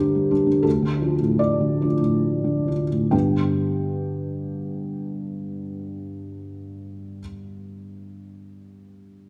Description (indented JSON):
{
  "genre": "neoclassical minimalist piano",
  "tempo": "64-92 BPM",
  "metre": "3/4",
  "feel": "rubato",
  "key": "unclear",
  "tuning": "A4 = 441 Hz",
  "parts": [
    { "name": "felt-muted upright piano", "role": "solo", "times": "0.0-9.3 s", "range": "D2 to G5", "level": "-24 LUFS", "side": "equal", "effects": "none" }
  ],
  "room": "wet recital hall reverb, RT60 1.6 s",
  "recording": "recorded in a church or concert hall",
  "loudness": "-23 LUFS",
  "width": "mono",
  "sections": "0.0-3.1 A section; 3.1-8.6 B section",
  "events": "slowing down 0.0-3.1",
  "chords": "0.0 Gm; 0.6 Dm; 3.1 G"
}